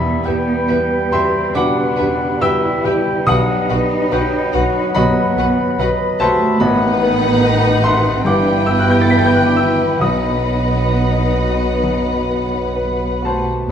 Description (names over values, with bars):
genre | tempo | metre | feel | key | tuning
classical, romantic movement for piano and orchestra | 64-75 BPM | 4/4 | rubato | unclear | A4 = 439 Hz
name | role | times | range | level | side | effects
clear baby grand piano | melody | 0.0-13.7 s | A1 to B6 | -19 LUFS | left 1 dB | none
small flute group | second line | 0.0-13.7 s | B5 | -26 LUFS | left 1 dB | none
warm clarinet | second line | 0.0-13.2 s | D#5 to G5 | -24 LUFS | left 2 dB | none
mellow bassoon | accompaniment | 0.0-13.7 s | D#3 to G3 | -24 LUFS | right 2 dB | none
mellow French horn section | sustained chords | 0.0-13.7 s | D#3 to B4 | -23 LUFS | left 1 dB | none
dark studio cello section | bass | 0.0-13.7 s | A3 to B4 | -23 LUFS | right 2 dB | none
timpani | percussion | 0.0-4.5, 10.0-13.7 s | E2 to B2 | -24 LUFS | equal | none
rich studio violin section | second line | 0.2-13.7 s | B4 | -26 LUFS | left 5 dB | none
warm studio violin section | melody | 0.3-13.7 s | E5 to G5 | -27 LUFS | left 4 dB | none
warm studio viola section | accompaniment | 0.3-13.7 s | B3 to G4 | -23 LUFS | right 1 dB | none
rich studio double bass section | bass | 0.3-13.7 s | G1 to E2 | -22 LUFS | right 2 dB | none
room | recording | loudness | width
wet recital hall reverb, RT60 1.6 s | minimal, uncompressed stereo recording | -13 LUFS | side -8 dB against mid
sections
0.0-13.7 A section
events
none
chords
0.0 Em; 3.3 B; 6.6 B7/A; 8.3 Em/G; 10.0 B